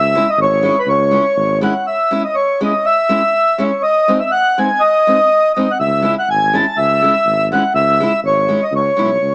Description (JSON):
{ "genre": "alpine folk, alpine dance band", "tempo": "122 BPM", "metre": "2/4", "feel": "swing 55% on 8ths", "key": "C# minor", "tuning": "A4 = 441 Hz", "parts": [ { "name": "mellow accordion", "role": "melody", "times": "0.0-9.3 s", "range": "B4 to A5", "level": "-15 LUFS", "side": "equal", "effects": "none" }, { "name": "mellow tuba", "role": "bass", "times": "0.0-1.7, 5.8-9.3 s", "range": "G#1 to C#2", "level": "-23 LUFS", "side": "equal", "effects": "none" }, { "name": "picked steel-string acoustic guitar", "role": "accompaniment", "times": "0.2-9.1 s", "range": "G#3 to E4", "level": "-23 LUFS", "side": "equal", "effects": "none" } ], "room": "moderate small room reverb, RT60 0.6 s", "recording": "cassette tape, small speaker sound", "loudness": "-14 LUFS", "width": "mono", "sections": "0.0-1.9 A section; 1.9-9.3 A section", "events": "none", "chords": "0.0 C#m; 3.8 G#; 5.8 C#m", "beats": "0.38 | 0.87 1.36 | 1.85 2.35 | 2.84 3.33 | 3.82 4.31 | 4.80 5.29 | 5.79 6.28 | 6.77 7.26 | 7.74 8.23 | 8.72 9.21" }